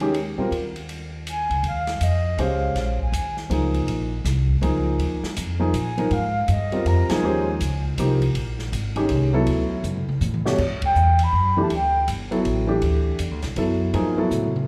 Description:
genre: modal jazz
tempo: 161 BPM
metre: 3/4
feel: swing 64% on 8ths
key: Eb mixolydian, G major from 10.6 s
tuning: A4 = 441 Hz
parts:
  - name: warm baby grand piano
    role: accompaniment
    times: 0.0-14.5 s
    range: B2 to Db5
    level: -26 LUFS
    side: equal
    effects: slapback echo
  - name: upright bass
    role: bass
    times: 0.0-14.7 s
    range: G1 to Bb2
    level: -26 LUFS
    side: equal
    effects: none
  - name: open jazz drum kit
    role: drums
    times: 0.0-14.7 s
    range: crash cymbal, hi-hat, kick drum, ride cymbal, snare drum, toms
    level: -35 LUFS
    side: equal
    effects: none
  - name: mellow concert flute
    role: melody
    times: 1.3-3.4, 5.8-7.8, 10.8-12.1 s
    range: Eb5 to B5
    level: -27 LUFS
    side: equal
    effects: slapback echo
room: moderate lush hall reverb, RT60 2.2 s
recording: live gig heard through the venue's PA, club reverb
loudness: -22 LUFS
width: mono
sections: 0.0-1.6 A section; 1.6-10.6 B section; 10.6-14.7 C section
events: band accent 7.0, 10.8; drum fill 9.8-10.6, 14.3-14.7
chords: 0.0 Eb7sus4; 1.6 Eb9sus4; 9.5 D69; 10.6 Gmaj9

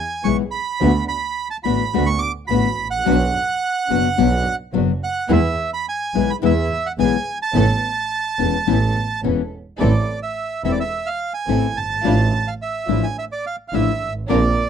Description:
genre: tango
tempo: 107 BPM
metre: 4/4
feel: rubato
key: A major, A harmonic minor from 9.8 s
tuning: A4 = 438 Hz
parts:
  - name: bandoneon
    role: melody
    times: 0.0-14.7 s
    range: D5 to D6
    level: -22 LUFS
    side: right 5 dB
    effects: none
  - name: nylon-string guitar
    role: accompaniment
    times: 0.2-14.4 s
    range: B2 to F#4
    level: -19 LUFS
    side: left 14 dB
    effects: none
  - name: dark studio string section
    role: stabs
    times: 0.2-14.5 s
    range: B3 to Bb4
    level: -26 LUFS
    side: right 3 dB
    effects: none
  - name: clear double bass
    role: bass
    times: 0.2-14.5 s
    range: E1 to E2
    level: -21 LUFS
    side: right 2 dB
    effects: none
room: little or no reverb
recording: dry, close 1970s-style studio recording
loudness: -17 LUFS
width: side -8 dB against mid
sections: 0.0-9.8 A section; 9.8-14.7 B section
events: none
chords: 0.0 E; 0.8 D6; 3.1 Bm; 5.3 E; 7.5 Aadd9; 9.8 Am; 12.1 Dmadd9/A

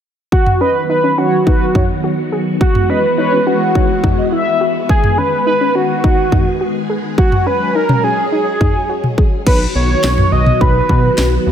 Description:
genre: synth-pop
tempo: 105 BPM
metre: 4/4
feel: straight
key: B major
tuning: A4 = 440 Hz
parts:
  - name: octave-doubled lead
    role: melody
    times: 0.3-11.5 s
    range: F#4 to D#5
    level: -16 LUFS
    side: right 2 dB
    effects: chorus, ping-pong delay
  - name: phased string machine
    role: sustained chords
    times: 0.3-11.5 s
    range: D#3 to G#4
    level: -20 LUFS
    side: left 1 dB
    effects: ensemble chorus, phaser
  - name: soft round pluck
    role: arpeggios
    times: 0.3-9.4 s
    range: C#4 to G#4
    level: -22 LUFS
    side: left 2 dB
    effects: chorus, ping-pong delay
  - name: house drum kit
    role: drums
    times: 0.3-11.3 s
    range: crash cymbal, kick drum, snare drum, toms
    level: -14 LUFS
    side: equal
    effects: none
  - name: mellow synth brass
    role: second line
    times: 0.6-4.7 s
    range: B4 to E5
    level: -22 LUFS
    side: left 4 dB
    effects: chorus, ping-pong delay
  - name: chorused synth bass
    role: bass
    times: 9.5-11.5 s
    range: B1 to B2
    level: -15 LUFS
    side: equal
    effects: none
room: light reverb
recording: none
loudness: -12 LUFS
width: side -9 dB against mid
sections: 0.3-9.5 A section; 9.5-11.5 B section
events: none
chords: 0.3 B; 2.6 Eadd9; 4.9 G#m; 7.2 F#sus2; 9.5 B

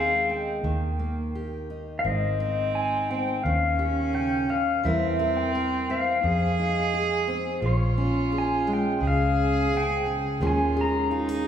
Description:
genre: acoustic folk-pop ballad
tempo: 86 BPM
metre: 4/4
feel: straight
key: Ab major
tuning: A4 = 438 Hz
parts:
  - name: pedal steel guitar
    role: melody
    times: 0.0-11.5 s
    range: Db5 to Bb5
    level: -27 LUFS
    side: left 2 dB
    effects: none
  - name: rich cello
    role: second line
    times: 0.0-11.5 s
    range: Bb3 to Ab4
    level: -29 LUFS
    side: right 3 dB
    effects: none
  - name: fingerpicked steel-string acoustic guitar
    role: accompaniment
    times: 0.0-11.5 s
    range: F2 to Bb4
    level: -29 LUFS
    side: equal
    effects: none
  - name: vintage muted fingered electric bass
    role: bass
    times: 0.0-11.5 s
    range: Ab1 to F2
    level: -29 LUFS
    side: equal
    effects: none
room: wet recital hall reverb, RT60 1.6 s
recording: recorded in a church or concert hall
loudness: -22 LUFS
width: side -9 dB against mid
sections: 0.0-2.0 A section; 2.0-11.5 B section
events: none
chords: 0.0 Ebsus4; 0.6 Eb; 2.0 Ab; 3.4 Eb7; 4.8 C7/E; 6.2 Fm7; 7.6 Bbm7; 9.0 Db; 10.4 Eb7sus4

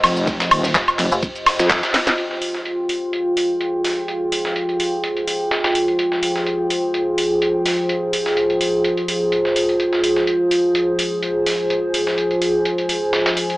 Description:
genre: bass house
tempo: 126 BPM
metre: 4/4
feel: swing 54% on 16ths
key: F minor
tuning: A4 = 442 Hz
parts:
  - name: deep dark ambient pad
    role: sustained chords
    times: 0.0-13.6 s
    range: F3 to C6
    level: -23 LUFS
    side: equal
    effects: chorus, built-in reverb, sidechain pumping
  - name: metallic wobble bass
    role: bass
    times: 0.0-1.8 s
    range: Eb1 to F2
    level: -21 LUFS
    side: equal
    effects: chorus, tube saturation, sidechain pumping
  - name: dusty soul sampler-style drum kit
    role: drums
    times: 0.0-13.6 s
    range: hi-hat, snare drum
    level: -24 LUFS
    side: equal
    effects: sidechain pumping on hats, high-pass filter on hats, low-pass filter on hats, high-pass filter on snare, low-pass filter on snare, high-pass filter on room, low-pass filter on room
  - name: garage drum kit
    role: drums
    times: 0.0-13.5 s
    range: cabasa, handclaps, hi-hat, ride cymbal, snare drum, woodblock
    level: -20 LUFS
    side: equal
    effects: none
  - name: warbly tape-like pad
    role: texture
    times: 0.0-13.6 s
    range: F4 to Eb5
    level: -20 LUFS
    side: equal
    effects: chorus, built-in reverb, sidechain pumping
  - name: electronic kick drum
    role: drums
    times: 0.3-1.8 s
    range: none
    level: -25 LUFS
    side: equal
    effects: none
  - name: metallic FM bass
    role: bass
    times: 0.8-1.6 s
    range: F1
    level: -22 LUFS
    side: equal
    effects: tube saturation, sidechain pumping
room: wet lush hall reverb, RT60 1.7 s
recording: AM radio sound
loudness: -17 LUFS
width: side -20 dB against mid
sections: 0.0-2.2 A section; 2.2-13.6 B section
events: drop 0.0-2.2; band accent 1.7; drum fill 1.9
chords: 0.0 Fsus2; 2.2 Fmadd9

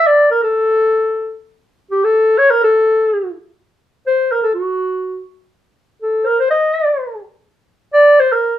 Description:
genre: klezmer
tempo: 124 BPM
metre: 2/4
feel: straight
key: unclear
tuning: A4 = 440 Hz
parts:
  - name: dark clarinet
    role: solo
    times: 0.0-8.6 s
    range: F#4 to Eb5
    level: -12 LUFS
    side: equal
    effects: none
room: wet studio reverb, RT60 0.6 s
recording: rough home demo mix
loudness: -12 LUFS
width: side -12 dB against mid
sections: 0.0-3.6 A section; 3.6-8.6 B section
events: none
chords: none

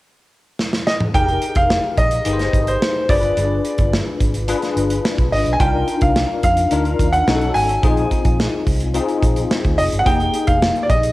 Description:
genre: polished 1980s jazz-funk pop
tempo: 108 BPM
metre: 4/4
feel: straight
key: F dorian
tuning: A4 = 440 Hz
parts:
  - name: modern studio drum kit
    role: drums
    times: 0.6-11.1 s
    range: hi-hat, kick drum, snare drum, toms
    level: -20 LUFS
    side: right 1 dB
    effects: cassette tape
  - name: bright baby grand piano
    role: melody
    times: 0.9-11.1 s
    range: C5 to Ab5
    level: -19 LUFS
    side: right 1 dB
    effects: none
  - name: bell-like tine electric piano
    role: accompaniment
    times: 1.1-11.1 s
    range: Bb3 to C5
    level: -21 LUFS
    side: left 4 dB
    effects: ensemble chorus, cassette tape
  - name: vintage muted fingered electric bass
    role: bass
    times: 1.1-11.1 s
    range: F1 to F2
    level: -22 LUFS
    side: right 1 dB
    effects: none
room: light reverb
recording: home recording on cassette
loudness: -15 LUFS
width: side -18 dB against mid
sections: 0.0-1.1 A section; 1.1-11.1 B section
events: drum fill 0.6-1.1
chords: 0.0 N.C.; 1.1 Fm11; 3.1 G7b9; 5.6 Cm11; 7.3 B9; 7.8 Bb7sus4; 10.1 Fm11

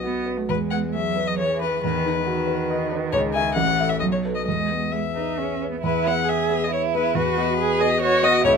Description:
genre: quick classical-period movement for piano trio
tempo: 136 BPM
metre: 3/4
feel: rubato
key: E major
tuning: A4 = 440 Hz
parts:
  - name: rich violin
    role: melody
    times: 0.0-8.5 s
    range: B4 to G#5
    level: -24 LUFS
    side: left 4 dB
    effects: none
  - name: rich cello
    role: second line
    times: 0.0-8.6 s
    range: D#3 to G#4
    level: -26 LUFS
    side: right 8 dB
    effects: none
  - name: warm concert grand piano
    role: accompaniment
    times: 0.0-8.6 s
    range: A1 to E5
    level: -24 LUFS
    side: left 1 dB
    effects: none
room: light reverb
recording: none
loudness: -20 LUFS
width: side -6 dB against mid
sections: 0.0-5.8 A section; 5.8-8.6 B section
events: none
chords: 0.5 E; 1.8 B/E; 3.1 C#m; 3.6 A5; 4.0 B5; 4.5 E; 7.2 B/E

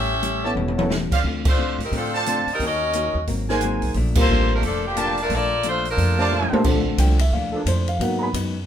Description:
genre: jazz, big band swing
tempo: 178 BPM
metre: 4/4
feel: swing 63% on 8ths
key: Bb major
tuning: A4 = 440 Hz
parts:
  - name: edgy saxophone section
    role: melody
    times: 0.0-6.5 s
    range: F3 to E5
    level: -23 LUFS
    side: left 1 dB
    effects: none
  - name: hollow-body jazz guitar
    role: accompaniment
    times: 0.0-8.6 s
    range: Ab2 to Gb4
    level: -30 LUFS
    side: left 6 dB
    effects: none
  - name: upright bass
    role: bass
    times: 0.0-8.7 s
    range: E1 to A2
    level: -24 LUFS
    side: right 1 dB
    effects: none
  - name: open jazz drum kit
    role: drums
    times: 0.2-8.4 s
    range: crash cymbal, hi-hat, kick drum, ride cymbal, snare drum, toms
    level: -25 LUFS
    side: equal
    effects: none
  - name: warm grand piano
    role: accompaniment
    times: 0.4-0.9, 3.5-8.3 s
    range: Bb2 to Cb6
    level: -24 LUFS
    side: left 1 dB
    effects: none
  - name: clear trumpet section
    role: stabs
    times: 0.4-6.6 s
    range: F4 to A5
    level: -25 LUFS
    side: right 3 dB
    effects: none
  - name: warm trombone section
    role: sustained chords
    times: 6.6-8.3 s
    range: F3 to A4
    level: -30 LUFS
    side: right 2 dB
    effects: none
room: moderate large studio reverb, RT60 0.9 s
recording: minimal, uncompressed stereo recording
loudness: -19 LUFS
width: side -10 dB against mid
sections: 0.0-6.6 A section; 6.6-8.7 B section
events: drum fill 0.6-0.9, 6.3-6.6; band accent 1.4, 4.1; grand piano solo 6.6-8.7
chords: 0.0 A7; 1.2 Dm7; 2.6 Ebm7; 3.3 Ab9; 3.9 Bbmaj7; 8.0 Abm7

